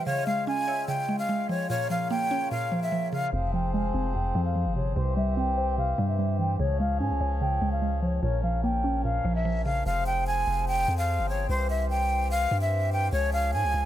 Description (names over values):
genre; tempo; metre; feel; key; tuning
hip hop; 147 BPM; 4/4; half-time; F harmonic minor; A4 = 439 Hz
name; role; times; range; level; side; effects
breathy jazz flute; melody; 0.0-13.9 s; C5 to Ab5; -28 LUFS; equal; low-pass filter, ping-pong delay
warm velvety synth lead; second line; 0.0-2.9 s; Db5 to F5; -37 LUFS; left 1 dB; chorus, ping-pong delay
mallet-like synth pluck; accompaniment; 0.0-9.9 s; F2 to Db5; -30 LUFS; right 1 dB; chorus, low-pass filter
hand-pumped harmonium; sustained chords; 0.0-13.9 s; Db3 to Db5; -36 LUFS; left 3 dB; stereo widening
long sustained 808-style bass; bass; 3.3-13.9 s; F1 to Ab2; -28 LUFS; equal; none
room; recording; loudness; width
small room ambience; none; -24 LUFS; side -12 dB against mid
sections
0.0-3.3 A section; 3.3-13.9 B section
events
filter sweep 3.3-9.9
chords
0.1 Db; 1.7 Bbm; 3.3 Fm; 5.0 C; 6.6 Db; 8.2 Bbm; 9.9 Fm; 11.5 C; 13.1 Db